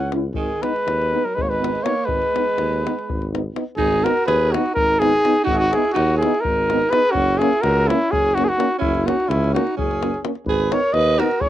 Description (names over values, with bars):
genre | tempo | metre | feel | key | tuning
balkan folk, Balkan brass band | 250 BPM (eighths) | 7/8 | straight | G# minor | A4 = 444 Hz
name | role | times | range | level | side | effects
mellow trumpet | melody | 0.0-11.5 s | E4 to F#5 | -19 LUFS | equal | cassette tape, plate reverb
breathy alto saxophone | second line | 0.0-11.5 s | D#3 to B4 | -26 LUFS | right 7 dB | cassette tape, plate reverb
mellow tuba | bass | 0.0-11.5 s | F#1 to D#2 | -24 LUFS | equal | none
davul | percussion | 0.0-11.5 s | none | -29 LUFS | left 4 dB | none
warm French horn | accompaniment | 0.1-11.3 s | C#4 to E4 | -27 LUFS | left 8 dB | cassette tape, plate reverb
warm euphonium | accompaniment | 0.1-11.3 s | A#3 to C#4 | -28 LUFS | right 9 dB | cassette tape, plate reverb
room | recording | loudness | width
moderate booth ambience, RT60 0.3 s | home recording on cassette | -17 LUFS | side -12 dB against mid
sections
0.0-3.8 A section; 3.8-11.5 B section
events
speeding up 0.0-11.5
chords
0.3 G#m; 7.1 F#; 10.5 G#m